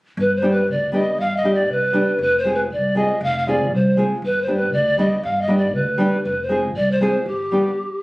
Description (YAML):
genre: balkan folk, Balkan wedding band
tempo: 118 BPM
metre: 2/4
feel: swing 56% on 16ths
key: G phrygian dominant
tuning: A4 = 440 Hz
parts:
  - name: mellow polished pan flute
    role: melody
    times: 0.2-8.0 s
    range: G4 to F5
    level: -20 LUFS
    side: equal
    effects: plate reverb
  - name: upright bass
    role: bass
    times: 0.2-7.6 s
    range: F1 to D2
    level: -25 LUFS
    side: equal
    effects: none
  - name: nylon-string guitar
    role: accompaniment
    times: 0.4-7.7 s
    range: G3 to Ab4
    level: -20 LUFS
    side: equal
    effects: none
room: moderate studio reverb, RT60 0.5 s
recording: recorded on a phone in the room, studio reverb, compression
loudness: -17 LUFS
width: side -21 dB against mid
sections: 0.2-8.0 A section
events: stop 7.8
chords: 0.2 G; 2.2 Fm; 4.2 G; 6.3 Fm; 7.3 G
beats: | 0.17 0.68 | 1.18 1.69 | 2.20 2.71 | 3.21 3.72 | 4.23 4.73 | 5.24 5.75 | 6.25 6.76 | 7.27 7.77